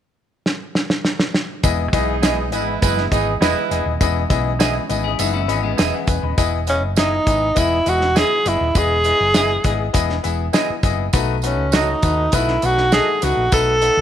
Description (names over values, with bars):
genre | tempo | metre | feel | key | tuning
uptempo 1960s-style soul | 101 BPM | 4/4 | straight | E major | A4 = 440 Hz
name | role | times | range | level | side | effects
warm soul drum kit | drums | 0.5-14.0 s | hi-hat, kick drum, snare drum | -20 LUFS | right 1 dB | none
bright grand piano | accompaniment | 1.6-14.0 s | A3 to B5 | -23 LUFS | left 11 dB | none
mellow tonewheel organ | sustained chords | 1.6-6.4 s | E3 to D#5 | -29 LUFS | right 2 dB | chorus vibrato, lush chorus
hollow-body short-scale fingered electric bass | bass | 1.6-14.0 s | D#1 to D#2 | -22 LUFS | equal | none
tambourine | percussion | 1.6-14.0 s | none | -30 LUFS | right 15 dB | none
warm horn section | second line | 1.9-3.8 s | E3 to B4 | -24 LUFS | right 14 dB | none
electric guitar through a small old amp | stabs | 2.2-13.1 s | E4 to D#5 | -27 LUFS | right 11 dB | vibrato effect
clean electric guitar | riff | 5.0-6.3 s | G#3 to G#4 | -26 LUFS | left 12 dB | spring reverb
breathy tenor saxophone | melody | 6.7-14.0 s | C#4 to A4 | -17 LUFS | right 1 dB | none
room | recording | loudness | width
light reverb, small room ambience | 1960s-style stereo with parts hard left and right | -16 LUFS | side -10 dB against mid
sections
0.0-1.6 A section; 1.6-6.4 B section; 6.4-14.0 C section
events
drum fill 0.5-1.6; grand piano fill 5.2-6.4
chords
0.0 N.C.; 1.6 Emaj7; 11.1 B7